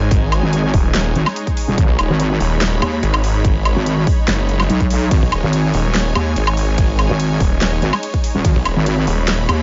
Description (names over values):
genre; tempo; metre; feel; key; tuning
heavy wobble dubstep; 144 BPM; 4/4; half-time; G# minor; A4 = 440 Hz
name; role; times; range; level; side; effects
supersaw pad; sustained chords; 0.0-9.6 s; G#3 to B5; -26 LUFS; equal; sidechain pumping
snarling distorted saw bass; bass; 0.0-9.5 s; D#1 to B1; -20 LUFS; equal; distortion, overdrive
big-room dance drum kit; drums; 0.1-9.6 s; handclaps, hi-hat, ride cymbal, snare drum, woodblock; -24 LUFS; equal; overdrive
electronic kick drum; drums; 0.1-8.5 s; none; -18 LUFS; equal; overdrive
wobble bass; bass; 0.4-9.6 s; D#1 to D#2; -19 LUFS; equal; chorus, overdrive
room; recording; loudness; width
digital ambience; nothing above 7.5 kHz; -16 LUFS; mono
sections
0.0-9.6 A section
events
none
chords
0.0 G#5